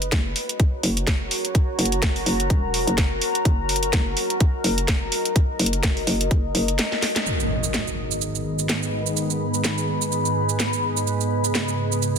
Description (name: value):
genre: bass house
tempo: 126 BPM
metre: 4/4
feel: swing 57% on 16ths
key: G# minor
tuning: A4 = 438 Hz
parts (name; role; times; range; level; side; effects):
- hollow knocking FM bass; bass; 0.0-6.8 s; E1 to F#1; -25 LUFS; equal; overdrive, sidechain pumping
- garage drum kit; drums; 0.0-12.2 s; hi-hat, shaker, snare drum; -25 LUFS; right 2 dB; none
- deep dark ambient pad; texture; 0.0-12.2 s; F#4 to B5; -26 LUFS; left 2 dB; chorus, built-in reverb, sidechain pumping
- electronic kick drum; drums; 0.1-6.4 s; none; -20 LUFS; equal; none
- sweeping resonant pad; sustained chords; 7.3-12.2 s; G#2 to B3; -25 LUFS; right 2 dB; chorus, sidechain pumping
- impact; sound effects; 7.3-9.2 s; none; -28 LUFS; equal; none
room: light reverb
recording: dense, heavily limited modern master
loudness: -20 LUFS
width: side -6 dB against mid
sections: 0.0-7.3 A section; 7.3-12.2 B section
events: drum fill 6.9-7.3; band accent 7.1; impact 7.3-9.2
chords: 0.0 F#; 7.3 G#m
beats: 0.12 0.60 1.07 | 1.55 2.02 2.50 2.98 | 3.45 3.93 4.41 4.88 | 5.36 5.83 6.31 6.79 | 7.26 7.74 8.21 8.69 | 9.17 9.64 10.12 10.60 | 11.07 11.55 12.02